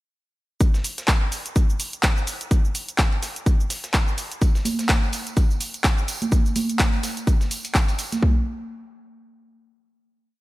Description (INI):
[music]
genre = house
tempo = 126 BPM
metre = 4/4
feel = swing 57% on 16ths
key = none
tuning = none
[part]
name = breakbeat sampler-style drum kit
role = drums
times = 0.6-8.2 s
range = hi-hat, snare drum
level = -36 LUFS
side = equal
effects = none
[part]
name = electronic kick drum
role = drums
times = 0.6-8.4 s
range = none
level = -19 LUFS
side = equal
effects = overdrive
[part]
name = punchy analog drum machine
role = drums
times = 0.6-8.2 s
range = handclaps, hi-hat, shaker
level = -26 LUFS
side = equal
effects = none
[part]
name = tambourine and congas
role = percussion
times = 4.4-8.2 s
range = none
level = -29 LUFS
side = right 3 dB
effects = none
[sound]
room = light reverb, digital ambience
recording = bright 1980s-style digital production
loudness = -20 LUFS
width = side -19 dB against mid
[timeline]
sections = 0.6-8.2 drop; 8.2-10.1 final hit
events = drop 0.6-8.2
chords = none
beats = | 0.61 1.08 1.56 2.04 | 2.51 2.99 3.46 3.94 | 4.42 4.89 5.37 5.84 | 6.32 6.80 7.27 7.75 | 8.22